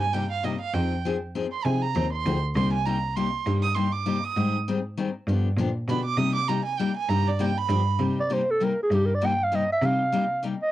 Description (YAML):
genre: acoustic string swing (jazz manouche)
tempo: 198 BPM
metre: 3/4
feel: swing 58% on 8ths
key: C minor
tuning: A4 = 440 Hz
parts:
  - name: warm violin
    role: second line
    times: 0.0-7.9 s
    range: D5 to Eb6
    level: -28 LUFS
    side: right 7 dB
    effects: cassette tape
  - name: picked steel-string acoustic guitar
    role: accompaniment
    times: 0.0-10.5 s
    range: C3 to Ab4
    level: -28 LUFS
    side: left 5 dB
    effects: cassette tape
  - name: bright cello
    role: bass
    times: 0.0-10.5 s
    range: C2 to C3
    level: -27 LUFS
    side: equal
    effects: none
  - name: growling clarinet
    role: melody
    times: 8.2-10.7 s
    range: G4 to G5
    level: -24 LUFS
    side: right 1 dB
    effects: cassette tape
room: light reverb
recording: home recording on cassette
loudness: -23 LUFS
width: side -14 dB against mid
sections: 0.0-8.0 A section; 8.0-10.7 A section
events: violin solo 0.0-8.0; clarinet solo 8.0-10.7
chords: 0.0 Cm7; 0.7 Fm7; 2.6 Cm7; 4.4 Abmaj7; 5.3 G7#9; 6.2 Cm7; 7.7 G7; 8.0 Cm7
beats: 0.13 0.43 | 0.74 1.04 1.34 | 1.64 1.95 2.25 | 2.55 2.85 3.16 | 3.46 3.76 4.06 | 4.37 4.67 4.97 | 5.27 5.58 5.88 | 6.18 6.49 6.79 | 7.09 7.39 7.70 | 8.00 8.30 8.61 | 8.91 9.21 9.52 | 9.82 10.12 10.43